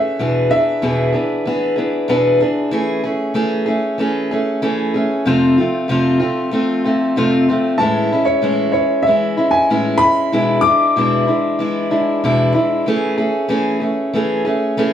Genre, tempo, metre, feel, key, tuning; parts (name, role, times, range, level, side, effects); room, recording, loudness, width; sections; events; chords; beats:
folk; 95 BPM; 4/4; straight; A major; A4 = 441 Hz
clear upright piano; melody; 0.0-2.4, 7.8-12.5 s; C#5 to D6; -18 LUFS; left 1 dB
picked steel-string acoustic guitar; accompaniment; 0.0-14.9 s; E2 to G#4; -15 LUFS; equal
wet studio reverb, RT60 0.6 s; heard from further back in the room; -14 LUFS; side -10 dB against mid
0.0-14.9 A section
0.2 E7; 2.7 Amaj7/E; 5.3 F; 7.8 Amaj7; 10.3 E7; 12.9 Amaj7/E
| 0.19 0.82 1.45 2.09 | 2.72 3.36 3.99 4.62 | 5.26 5.89 6.53 7.16 | 7.79 8.43 9.06 9.69 | 10.33 10.96 11.59 12.23 | 12.86 13.49 14.12 14.76